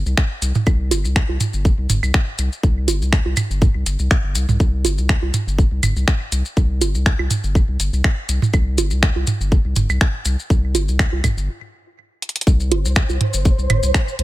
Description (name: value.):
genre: minimal techno.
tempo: 122 BPM.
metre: 4/4.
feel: swing 54% on 16ths.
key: unclear.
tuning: A4 = 440 Hz.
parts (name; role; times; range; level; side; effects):
round analog bass; bass; 0.0-14.2 s; G1 to C2; -20 LUFS; equal; sidechain pumping.
maracas; percussion; 0.1-14.2 s; none; -28 LUFS; left 4 dB; none.
electronic kick drum; drums; 0.2-14.1 s; none; -16 LUFS; equal; none.
garage drum kit; drums; 0.2-14.2 s; finger snaps, hi-hat; -23 LUFS; equal; none.
electronic toms, woodblock and bongos; percussion; 0.6-13.8 s; none; -21 LUFS; right 4 dB; none.
flickering grainy texture; texture; 12.9-14.2 s; C5; -26 LUFS; right 1 dB; built-in reverb, sidechain pumping.
room: digital ambience.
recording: none.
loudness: -16 LUFS.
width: side -16 dB against mid.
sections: 0.0-12.5 A section; 12.5-14.2 B section.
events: stop 11.5-12.5; drum fill 12.2; drop 12.5-14.2.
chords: 0.0 C5.